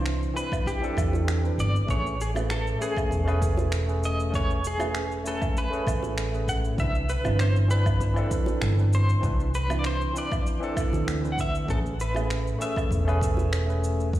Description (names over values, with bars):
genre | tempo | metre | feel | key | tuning
sunset chillout | 98 BPM | 4/4 | swing 53% on 16ths | unclear | A4 = 445 Hz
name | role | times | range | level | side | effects
semi-hollow electric guitar | melody | 0.0-13.8 s | G4 to F#5 | -32 LUFS | equal | tremolo, ping-pong delay, shimmer reverb
barky tine electric piano | accompaniment | 0.0-14.1 s | E3 to G#5 | -30 LUFS | moving between left 2 dB and right 6 dB | auto-pan, ping-pong delay, shimmer reverb
hollow-body short-scale fingered electric bass | bass | 0.0-14.2 s | E1 to E2 | -25 LUFS | equal | none
electronic finger snaps, cabasa and woodblock | drums | 0.1-14.2 s | none | -36 LUFS | right 2 dB | overdrive
electronic kick drum | drums | 0.5-14.2 s | none | -29 LUFS | equal | overdrive
bongos | percussion | 1.1-13.5 s | none | -38 LUFS | left 1 dB | none
room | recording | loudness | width
light reverb | played on a big sound system in a bare room, large studio reverb | -23 LUFS | side -14 dB against mid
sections
0.0-14.2 A section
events
kick drops out 1.3-1.9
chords
0.0 Cmaj9; 1.9 Amaj9; 6.8 Cmaj9; 11.7 Amaj9